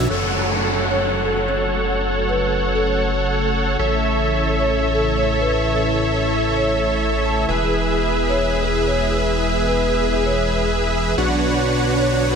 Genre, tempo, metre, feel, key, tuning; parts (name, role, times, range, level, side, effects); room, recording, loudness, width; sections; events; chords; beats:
EDM; 130 BPM; 4/4; straight; F# minor; A4 = 438 Hz
lush unison pad; sustained chords; 0.0-12.4 s; B2 to F#4; -25 LUFS; left 1 dB; chorus
dense compressed supersaw; riff; 0.0-12.4 s; D4 to F#5; -20 LUFS; right 1 dB; low-pass filter, digital delay
fat analog bass; bass; 0.0-12.4 s; E1 to B1; -24 LUFS; equal
downlifter and riser; sound effects; 0.1-3.8, 12.1-12.4 s; -27 LUFS; equal
marimba with soft mallets; melody; 0.9-12.4 s; G#4 to A5; -24 LUFS; equal; digital delay
moderate digital room reverb, RT60 1.2 s, digital ambience; -17 LUFS; side -6 dB against mid
0.1-12.4 A section
filter sweep on analog synth pad 0.1-12.4
0.1 F#m; 3.8 A; 7.5 E; 11.2 Bmadd9
| 0.10 0.56 1.02 1.49 | 1.95 2.41 2.87 3.33 | 3.79 4.26 4.72 5.18 | 5.64 6.10 6.56 7.03 | 7.49 7.95 8.41 8.87 | 9.33 9.79 10.26 10.72 | 11.18 11.64 12.10